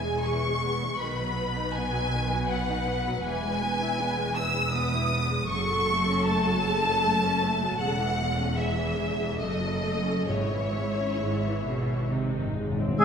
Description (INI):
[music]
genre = classical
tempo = 65-81 BPM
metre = 3/4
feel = rubato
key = C# minor from 3.2 s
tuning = A4 = 440 Hz
[part]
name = rich studio violin section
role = melody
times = 0.0-13.0 s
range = C#5 to E6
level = -31 LUFS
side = left 2 dB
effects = none
[part]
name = rich studio violin section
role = second line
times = 0.0-13.0 s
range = C#5 to E6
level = -32 LUFS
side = left 1 dB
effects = none
[part]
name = warm studio viola section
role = accompaniment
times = 0.0-13.0 s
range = B#2 to B4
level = -31 LUFS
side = left 1 dB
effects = none
[part]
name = rich studio cello section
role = bass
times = 0.0-13.0 s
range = E2 to G#3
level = -32 LUFS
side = right 1 dB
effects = none
[part]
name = rich studio double bass section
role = bass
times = 0.0-13.0 s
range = E1 to C#2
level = -32 LUFS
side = right 2 dB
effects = none
[part]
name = timpani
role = percussion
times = 10.3-13.0 s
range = G#2 to C#3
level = -32 LUFS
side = left 1 dB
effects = none
[part]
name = mellow clarinet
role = second line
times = 13.0 s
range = G#4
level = -25 LUFS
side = right 1 dB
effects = none
[part]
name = silver concert flute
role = second line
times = 13.0 s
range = E6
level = -18 LUFS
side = left 2 dB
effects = none
[part]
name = warm oboe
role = second line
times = 13.0 s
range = G#4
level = -21 LUFS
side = right 3 dB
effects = none
[part]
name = dark French horn section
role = sustained chords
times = 13.0 s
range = G#3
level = -24 LUFS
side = left 4 dB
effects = none
[sound]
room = wet scoring stage reverb, RT60 1.9 s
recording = minimal, uncompressed stereo recording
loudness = -24 LUFS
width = side -7 dB against mid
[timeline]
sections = 0.0-13.0 A section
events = timpani fill 12.1-13.0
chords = 0.0 E; 1.0 B; 3.2 E; 5.5 F#m; 7.8 C#m/E; 9.4 F#m; 10.3 C#m/G#; 12.1 G#